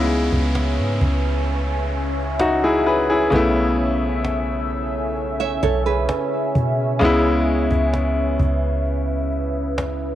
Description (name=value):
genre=contemporary R&B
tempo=65 BPM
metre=4/4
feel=straight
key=C# minor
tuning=A4 = 440 Hz
part: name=bright grand piano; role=accompaniment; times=0.0-10.2 s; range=C#3 to B4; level=-22 LUFS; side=left 2 dB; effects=cassette tape
part: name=deep dark ambient pad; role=sustained chords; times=0.0-10.2 s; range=C#4 to E5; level=-24 LUFS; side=equal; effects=chorus, built-in reverb, cassette tape
part: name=soft 808-style bass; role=bass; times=0.0-10.2 s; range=B1 to B2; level=-23 LUFS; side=equal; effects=none
part: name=downlifter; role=sound effects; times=0.0-7.0 s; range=none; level=-35 LUFS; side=right 2 dB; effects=none
part: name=cajon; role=drums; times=0.1-10.0 s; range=none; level=-25 LUFS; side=equal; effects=none
part: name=flamenco guitar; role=arpeggios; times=5.4-7.0 s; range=G#4 to E5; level=-23 LUFS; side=right 8 dB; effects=cassette tape, analog delay
room=moderate spring reverb, RT60 2.6 s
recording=home recording on cassette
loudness=-18 LUFS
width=side -12 dB against mid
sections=0.0-10.2 A section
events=none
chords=0.0 C#m7; 3.3 B9sus4; 7.0 C#m7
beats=0.55 1.48 2.40 | 3.32 4.24 5.17 6.09 | 7.01 7.94 8.86 9.78